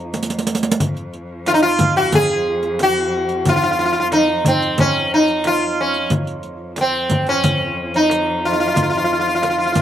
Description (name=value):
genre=Persian modal ensemble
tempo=90 BPM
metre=4/4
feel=straight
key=F dastgah shur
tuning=A4 = 438 Hz
part: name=warm cello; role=drone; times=0.0-9.8 s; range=F2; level=-29 LUFS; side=left 1 dB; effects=none
part: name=frame drum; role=percussion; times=0.1-9.8 s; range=none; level=-21 LUFS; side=left 1 dB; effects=slapback echo
part: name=riq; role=percussion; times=0.1-9.8 s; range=none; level=-23 LUFS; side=right 4 dB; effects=none
part: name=tombak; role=percussion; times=0.1-9.8 s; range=none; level=-28 LUFS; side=equal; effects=none
part: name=sitar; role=melody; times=1.5-9.8 s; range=C4 to Ab4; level=-16 LUFS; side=equal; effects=slapback echo
room=little or no reverb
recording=recorded outdoors, with no room sound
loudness=-15 LUFS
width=side -10 dB against mid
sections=0.0-9.8 A section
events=drum fill 0.1-0.8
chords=none